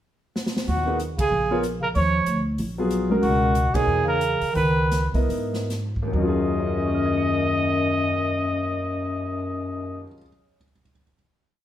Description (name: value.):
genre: modal jazz.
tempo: 132-188 BPM.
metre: 4/4.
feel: swing 61% on 8ths.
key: Eb minor.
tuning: A4 = 440 Hz.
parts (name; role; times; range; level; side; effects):
swinging big-band drum kit; drums; 0.4-6.0 s; hi-hat, kick drum, ride cymbal, snare drum; -31 LUFS; right 1 dB; none.
warm trumpet; melody; 0.7-10.1 s; Gb4 to Eb5; -25 LUFS; right 1 dB; plate reverb.
mellow bass clarinet; second line; 0.7-10.1 s; Gb2 to F3; -26 LUFS; left 2 dB; none.
upright bass; bass; 0.7-10.1 s; Bb1 to Ab2; -27 LUFS; equal; none.
clear grand piano; accompaniment; 0.9-11.1 s; Eb2 to Db7; -26 LUFS; left 1 dB; none.
room: wet studio reverb, RT60 0.6 s.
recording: heard from further back in the room.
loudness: -21 LUFS.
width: side -11 dB against mid.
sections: 0.0-0.7 pickup bar; 0.7-6.1 A section; 6.1-9.8 final chord.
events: drum fill 0.4-0.7; band accent 1.2, 3.7; slowing down 3.2-6.1.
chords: 0.0 N.C.; 0.7 Ebm11; 3.2 Dbm9; 6.1 Ebm11.